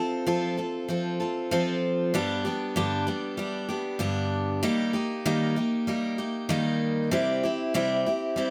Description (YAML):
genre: rock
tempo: 96 BPM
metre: 4/4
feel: straight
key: unclear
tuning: A4 = 439 Hz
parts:
  - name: picked steel-string acoustic guitar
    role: solo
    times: 0.0-8.5 s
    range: G2 to A4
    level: -28 LUFS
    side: equal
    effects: none
room: light reverb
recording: none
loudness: -28 LUFS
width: mono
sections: 0.0-8.5 A section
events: none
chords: 0.0 F; 2.1 G; 4.6 Eb; 7.1 C